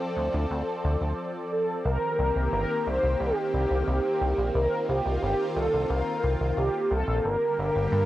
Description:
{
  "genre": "synthwave",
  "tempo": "89 BPM",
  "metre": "4/4",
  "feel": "straight",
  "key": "unclear",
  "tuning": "A4 = 443 Hz",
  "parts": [
    { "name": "lush unison pad", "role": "sustained chords", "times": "0.0-8.1 s", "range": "D3 to D5", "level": "-31 LUFS", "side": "equal", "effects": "chorus, phaser, cassette tape" },
    { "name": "chorused synth bass", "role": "bass", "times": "0.2-8.0 s", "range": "G1 to G2", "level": "-27 LUFS", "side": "equal", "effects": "none" },
    { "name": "mellow synth brass", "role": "melody", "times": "1.5-8.1 s", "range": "G4 to C5", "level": "-26 LUFS", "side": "equal", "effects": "chorus, cassette tape, tape echo" }
  ],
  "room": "moderate booth ambience, RT60 0.2 s",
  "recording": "home recording on cassette",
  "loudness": "-24 LUFS",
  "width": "side -14 dB against mid",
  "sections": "0.0-1.9 A section; 1.9-8.1 B section",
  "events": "none",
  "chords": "0.0 Dm7; 1.9 Cm7; 7.2 Gm"
}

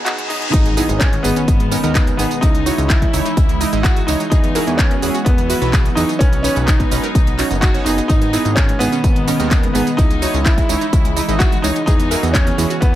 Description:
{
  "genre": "progressive house",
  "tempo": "127 BPM",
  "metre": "4/4",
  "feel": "straight",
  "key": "G# minor",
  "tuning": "A4 = 440 Hz",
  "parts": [
    { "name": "clear grand piano", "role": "melody", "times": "0.0-13.0 s", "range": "B3 to F#4", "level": "-22 LUFS", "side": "equal", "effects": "sidechain pumping, dub echo" },
    { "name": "evolving wavetable pad", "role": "sustained chords", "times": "0.0-13.0 s", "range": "B2 to D#5", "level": "-26 LUFS", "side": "equal", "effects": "chorus, built-in reverb, phaser, sidechain pumping" },
    { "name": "supersaw stab", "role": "stabs", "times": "0.0-12.7 s", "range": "B3 to D#5", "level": "-24 LUFS", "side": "right 4 dB", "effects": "sidechain pumping" },
    { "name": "fat analog bass", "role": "bass", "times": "0.0-13.0 s", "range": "F#1 to E2", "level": "-22 LUFS", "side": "equal", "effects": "sidechain pumping" },
    { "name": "riser, reverse cymbal and impact", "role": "sound effects", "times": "0.0-2.4 s", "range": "none", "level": "-27 LUFS", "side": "left 1 dB", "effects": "none" },
    { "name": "wide unison pluck", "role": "arpeggios", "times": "0.1-12.9 s", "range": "G#3 to C#5", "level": "-26 LUFS", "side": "equal", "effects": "sidechain pumping, dub echo" },
    { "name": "house drum kit", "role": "drums", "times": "0.1-12.9 s", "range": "handclaps, hi-hat, tambourine", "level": "-24 LUFS", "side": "right 1 dB", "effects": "sidechain pumping on hats, sidechain pumping on perc" },
    { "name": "rich chamber violin section", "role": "second line", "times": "0.5-13.0 s", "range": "B3 to F#4", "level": "-27 LUFS", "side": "left 2 dB", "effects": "sidechain pumping, dub echo" },
    { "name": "electronic kick drum", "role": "drums", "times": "0.5-12.9 s", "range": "none", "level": "-15 LUFS", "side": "equal", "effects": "none" }
  ],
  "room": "little or no reverb",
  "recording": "high-pass filter",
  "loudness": "-13 LUFS",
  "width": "side -13 dB against mid",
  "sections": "0.5-13.0 A section",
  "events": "riser 0.0-0.5; reverse cymbal 0.0-0.5; drop 0.5-13.0; impact 0.5-2.4",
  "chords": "0.0 Badd9; 0.5 G#m; 2.4 C#madd9; 4.3 Eadd9; 6.2 Badd9; 8.1 G#m; 10.0 C#madd9; 11.9 Eadd9"
}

